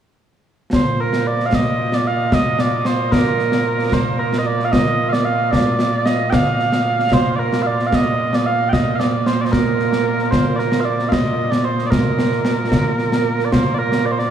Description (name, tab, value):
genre	scottish traditional, Scottish pipe music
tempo	75 BPM (dotted quarters)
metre	6/8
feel	straight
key	Bb major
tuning	A4 = 442 Hz
part	mellow small bagpipes	melody	0.7-14.3 s	Bb2 to G5	-17 LUFS	right 2 dB	none
part	concert snare drum and concert bass drum	drums	0.7-14.3 s	none	-19 LUFS	equal	none
room	wet huge ambient reverb, RT60 7.7 s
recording	heard from further back in the room, studio reverb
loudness	-15 LUFS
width	side -9 dB against mid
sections	0.7-13.5 A section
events	none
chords	none